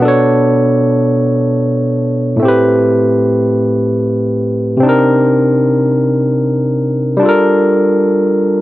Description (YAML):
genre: R&B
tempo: 50 BPM (dotted quarters)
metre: 6/8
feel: straight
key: unclear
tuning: A4 = 440 Hz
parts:
  - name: barky tine electric piano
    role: solo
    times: 0.0-8.6 s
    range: A2 to C#5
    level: -10 LUFS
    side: equal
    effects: overdrive
room: light reverb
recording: dry, close 1970s-style studio recording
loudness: -10 LUFS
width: side -16 dB against mid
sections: 0.0-8.6 A section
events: none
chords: 0.0 Bm9; 2.4 Am9; 4.8 Cm9; 7.2 Gm9